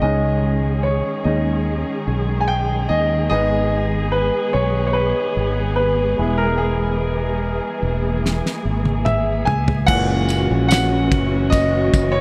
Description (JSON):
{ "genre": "pop ballad", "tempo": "73 BPM", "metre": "4/4", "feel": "straight", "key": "unclear", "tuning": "A4 = 438 Hz", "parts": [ { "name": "clear concert grand piano", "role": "accompaniment", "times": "0.0-12.2 s", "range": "A#2 to G#5", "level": "-23 LUFS", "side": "equal", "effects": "none" }, { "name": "warm studio string section", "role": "sustained chords", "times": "0.0-12.2 s", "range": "A#2 to G#4", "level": "-27 LUFS", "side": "equal", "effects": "none" }, { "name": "mellow fretless electric bass", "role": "bass", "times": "0.0-12.2 s", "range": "E1 to D#2", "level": "-23 LUFS", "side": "equal", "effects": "analog chorus" }, { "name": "damped 70s drum kit", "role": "drums", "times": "8.3-12.1 s", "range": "crash cymbal, kick drum, ride cymbal, snare drum, toms", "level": "-24 LUFS", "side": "equal", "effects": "none" }, { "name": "dark French horn section", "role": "second line", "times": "9.9-12.2 s", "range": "C#4", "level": "-26 LUFS", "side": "equal", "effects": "none" }, { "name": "tambourine", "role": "percussion", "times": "10.3-12.1 s", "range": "none", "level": "-34 LUFS", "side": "equal", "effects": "none" } ], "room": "small room ambience", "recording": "none", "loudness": "-19 LUFS", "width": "mono", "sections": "0.0-9.9 A section; 9.9-12.2 B section", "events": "grand piano solo 0.0-9.9, 9.9-12.2; drum fill 8.2-9.9", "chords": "0.0 C#sus2; 3.3 G#m; 6.2 E; 9.9 F#7" }